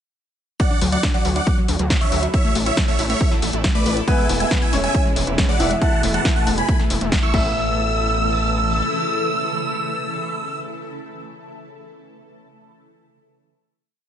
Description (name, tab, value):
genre	uplifting trance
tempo	138 BPM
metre	4/4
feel	straight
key	A major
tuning	A4 = 440 Hz
part	big supersaw lead	melody	0.6-10.6 s	B4 to E6	-24 LUFS	right 2 dB	phaser, sidechain pumping, ping-pong delay
part	shimmering ambient pad	sustained chords	1.4-10.6 s	B2 to A4	-28 LUFS	equal	chorus, built-in reverb, phaser, sidechain pumping
part	wide unison pluck	arpeggios	0.6-7.7 s	F#3 to E4	-26 LUFS	left 3 dB	sidechain pumping, ping-pong delay
part	electronic kick drum	drums	0.6-7.4 s	none	-20 LUFS	equal	overdrive
part	punchy analog drum machine	drums	0.6-7.4 s	crash cymbal, hi-hat, snare drum	-25 LUFS	equal	none
part	gritty driven synth bass	bass	0.8-8.8 s	E1 to D2	-23 LUFS	equal	sidechain pumping
part	warm concert grand piano	second line	4.1-10.6 s	B3 to E5	-27 LUFS	left 1 dB	digital delay
room	digital ambience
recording	nothing above 10.5 kHz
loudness	-17 LUFS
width	side -9 dB against mid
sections	0.6-7.6 drop; 7.6-11.0 final hit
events	drop 0.6-7.6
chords	0.6 Dadd9; 2.3 Asus2; 4.1 E; 5.8 Asus2/E; 7.3 A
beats	| 0.60 1.03 1.47 1.90 | 2.34 2.77 3.21 3.64 | 4.08 4.51 4.95 5.38 | 5.82 6.25 6.68 7.12 | 7.55 7.99 8.42 8.86 | 9.29 9.73 10.16